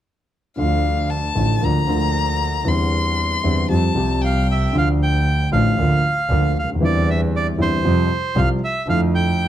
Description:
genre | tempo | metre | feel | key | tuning
tango | 116 BPM | 4/4 | rubato | D minor | A4 = 439 Hz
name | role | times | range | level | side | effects
warm violin | second line | 0.6-4.7 s | F5 to C6 | -23 LUFS | left 5 dB | none
dark concert grand piano | accompaniment | 0.6-9.5 s | A1 to G4 | -20 LUFS | equal | none
rich double bass | bass | 0.6-9.5 s | A1 to F2 | -21 LUFS | right 1 dB | none
bandoneon | melody | 4.2-9.5 s | C5 to G5 | -22 LUFS | right 3 dB | none
room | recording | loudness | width
light reverb | close, detailed microphones | -16 LUFS | side -11 dB against mid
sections
0.6-4.7 A section; 4.7-9.5 B section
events
none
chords
0.6 Dm; 1.6 Bb/D; 2.7 Cadd9/E; 3.7 Fsus2; 4.7 Dm; 5.8 Bb/D; 6.8 Cadd9/E; 7.8 Fsus2; 8.9 Dmadd9/F

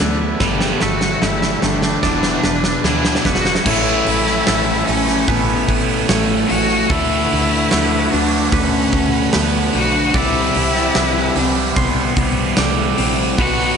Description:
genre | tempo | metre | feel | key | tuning
post-rock | 74 BPM | 4/4 | straight | unclear | A4 = 440 Hz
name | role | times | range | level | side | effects
rich cello | melody | 0.0-13.8 s | A3 to F#4 | -20 LUFS | left 1 dB | slapback echo, digital delay
pedal harmonium | sustained chords | 0.0-13.8 s | G3 to A5 | -30 LUFS | right 2 dB | none
twangy electric guitar | arpeggios | 0.0-3.7 s | E2 to E4 | -28 LUFS | left 2 dB | digital delay
twangy electric guitar | arpeggios | 0.0-13.8 s | A4 to C6 | -28 LUFS | right 6 dB | slapback echo, digital delay
crunchy overdriven guitar | riff | 0.0-13.8 s | E2 to D4 | -21 LUFS | left 7 dB | slapback echo
overdriven electric guitar | riff | 0.0-13.8 s | A2 to G4 | -23 LUFS | right 9 dB | phaser, slapback echo
woody FM bass | bass | 0.0-13.7 s | E1 to D2 | -24 LUFS | equal | none
huge arena drum kit | drums | 0.0-13.6 s | crash cymbal, hi-hat, kick drum, ride cymbal, snare drum | -19 LUFS | right 1 dB | none
room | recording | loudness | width
wet concert hall reverb, RT60 2.2 s | big arena sound, nothing above 10.8 kHz | -14 LUFS | side -6 dB against mid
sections
0.0-3.7 A section; 3.7-13.8 B section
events
build-up 0.0-3.7; drum fill 0.0-3.7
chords
0.4 Gsus2; 2.0 E7; 3.7 A; 6.9 D6; 10.1 Cadd9

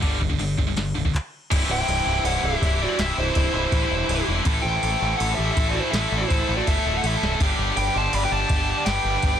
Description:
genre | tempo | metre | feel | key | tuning
heavy metal | 163 BPM | 4/4 | straight | unclear | A4 = 438 Hz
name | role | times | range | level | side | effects
heavy high-gain guitar | riff | 0.0-9.4 s | C2 to A3 | -28 LUFS | right 14 dB | distortion
tight distorted guitar | riff | 0.0-9.4 s | G2 to A4 | -27 LUFS | left 13 dB | distortion
growling picked electric bass | bass | 0.0-9.3 s | B0 to A1 | -26 LUFS | equal | overdrive
soft vintage rhythm box | drums | 0.0-9.3 s | crash cymbal, handclaps, kick drum, snare drum | -26 LUFS | equal | none
smooth overdriven lead guitar | melody | 1.7-9.4 s | C5 to B5 | -26 LUFS | equal | none
high-gain lead guitar | second line | 1.7-9.4 s | E4 to D5 | -32 LUFS | right 2 dB | distortion
room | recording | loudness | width
little or no reverb | dense, heavily limited modern master | -20 LUFS | side -9 dB against mid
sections
0.0-1.5 A section; 1.5-9.4 B section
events
stop 1.1-1.5; half time 1.5-9.4; drum fill 7.2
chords
0.0 G5; 1.5 C; 4.5 Am; 7.4 G

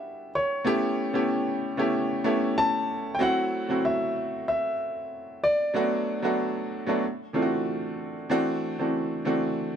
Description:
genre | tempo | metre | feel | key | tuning
soul | 94 BPM | 4/4 | swing 54% on 16ths | unclear | A4 = 443 Hz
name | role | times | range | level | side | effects
warm grand piano | melody | 0.0-6.3 s | C#5 to A5 | -27 LUFS | left 1 dB | none
clear baby grand piano | accompaniment | 0.0-9.8 s | E3 to G4 | -26 LUFS | equal | none
room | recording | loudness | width
moderate echo chamber reverb, RT60 1.3 s | dark, warm production | -24 LUFS | side -8 dB against mid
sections
0.0-8.3 A section; 8.3-9.8 B section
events
none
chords
0.0 Em9; 0.7 A9; 3.2 F#m7b5; 5.8 Bm7; 7.0 D9

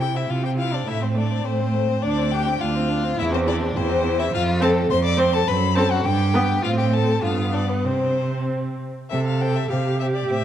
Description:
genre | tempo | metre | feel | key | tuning
quick classical-period movement for string quartet | 103 BPM | 2/4 | rubato | C major | A4 = 440 Hz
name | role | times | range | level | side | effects
rich violin | melody | 0.0-10.4 s | B4 to D6 | -27 LUFS | left 9 dB | none
rich violin | second line | 0.0-10.4 s | B3 to D5 | -26 LUFS | left 2 dB | none
rich viola | accompaniment | 0.0-10.4 s | A3 to A4 | -26 LUFS | right 2 dB | none
rich cello | bass | 0.0-10.4 s | D2 to C3 | -22 LUFS | right 2 dB | none
room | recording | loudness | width
wet scoring stage reverb, RT60 1.6 s | dark, warm production | -19 LUFS | side -10 dB against mid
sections
0.0-9.1 A section; 9.1-10.4 A section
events
none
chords
0.0 C; 0.9 Am; 2.0 Dm7; 3.2 C/E; 4.3 F6; 5.5 F#madd11; 6.1 G; 6.6 Am7; 7.2 G7; 7.9 N.C.; 9.1 C5

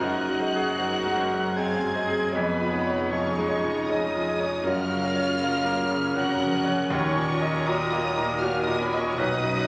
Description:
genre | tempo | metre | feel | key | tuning
classical, romantic movement for piano and orchestra | 78 BPM | 3/4 | rubato | unclear | A4 = 445 Hz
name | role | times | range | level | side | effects
clear grand piano | melody | 0.0-9.7 s | B1 to D#5 | -29 LUFS | equal | none
warm symphonic violin section | melody | 0.0-9.7 s | B5 to G#6 | -36 LUFS | equal | none
clear oboe | second line | 0.0-9.7 s | B4 to G#5 | -37 LUFS | equal | none
silver concert flute | second line | 0.0-9.7 s | B4 to G#5 | -39 LUFS | equal | none
warm clarinet | second line | 0.0-9.7 s | A#4 to C#5 | -41 LUFS | equal | none
warm symphonic violin section | second line | 0.0-9.7 s | C#5 to A#5 | -43 LUFS | equal | none
dark bassoon | accompaniment | 0.0-9.7 s | F#3 to G#3 | -36 LUFS | equal | none
rich studio viola section | accompaniment | 0.0-9.7 s | B#3 to B4 | -36 LUFS | equal | none
warm French horn section | sustained chords | 0.0-9.7 s | B3 to G#4 | -35 LUFS | equal | none
rich symphonic double bass section | bass | 0.0-9.7 s | E#1 to D#2 | -42 LUFS | equal | none
warm symphonic cello section | bass | 0.0-9.7 s | D#2 to B2 | -40 LUFS | equal | none
room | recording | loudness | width
wet recital hall reverb, RT60 1.6 s | none | -25 LUFS | mono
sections
0.0-9.7 A section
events
none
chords
0.0 G#7/F#; 2.3 C#7/E#; 4.7 F#; 6.9 D#m7

